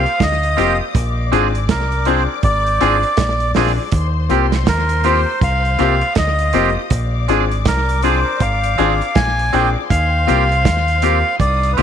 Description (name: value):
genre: lovers rock reggae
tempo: 80 BPM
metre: 4/4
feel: swing 61% on 16ths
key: Eb major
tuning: A4 = 441 Hz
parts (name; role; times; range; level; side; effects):
- melodica; melody; 0.0-11.8 s; Bb4 to Ab5; -19 LUFS; equal; tape echo
- warm studio string section; second line; 0.0-11.8 s; Eb4 to Eb6; -27 LUFS; left 14 dB; none
- deep dub fingered electric bass; bass; 0.0-11.8 s; F1 to Eb2; -18 LUFS; equal; none
- twangy electric guitar; stabs; 0.1-11.8 s; C4 to Ab4; -22 LUFS; right 13 dB; wide subtle chorus, slapback echo
- damped 70s drum kit; drums; 0.1-11.8 s; hi-hat, kick drum, snare drum; -19 LUFS; right 3 dB; slapback echo
- warm baby grand piano; accompaniment; 0.6-11.8 s; Bb3 to Ab4; -22 LUFS; left 12 dB; none
room: light reverb, small room ambience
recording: 1960s-style stereo with parts hard left and right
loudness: -14 LUFS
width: side -8 dB against mid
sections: 0.0-11.8 A section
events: none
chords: 0.0 Eb69; 0.9 Bb9; 3.9 Eb69; 6.9 Bb9; 9.9 Eb69